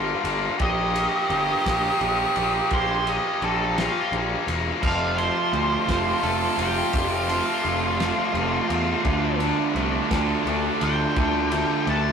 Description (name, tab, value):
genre	indie rock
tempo	57 BPM (dotted quarters)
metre	6/8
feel	straight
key	F major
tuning	A4 = 440 Hz
part	bright trumpet	second line	0.0-12.1 s	D4 to G4	-28 LUFS	right 4 dB	none
part	overdriven electric guitar	riff	0.0-12.1 s	F2 to D4	-26 LUFS	left 6 dB	none
part	fuzz picked electric bass	bass	0.0-12.1 s	E1 to E2	-28 LUFS	equal	overdrive
part	cloth-damped thuddy drum kit	drums	0.2-12.0 s	crash cymbal, kick drum, ride cymbal, snare drum	-31 LUFS	right 1 dB	none
part	octave-fuzz lead guitar	melody	0.6-12.1 s	F4 to A5	-28 LUFS	equal	distortion, digital delay
part	overdriven electric guitar	riff	4.8-12.1 s	F2 to F4	-27 LUFS	right 6 dB	none
room	moderate stone room reverb, RT60 1.1 s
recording	rough rehearsal-room recording, tube saturation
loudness	-20 LUFS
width	side -6 dB against mid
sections	0.0-12.1 A section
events	lead electric guitar solo 0.0-12.1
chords	0.0 Gm7; 0.6 Bbm; 4.8 F; 9.0 Dm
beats	| 0.60 1.65 | 2.71 3.76 | 4.82 5.88 | 6.93 7.99 | 9.04 10.10 | 11.16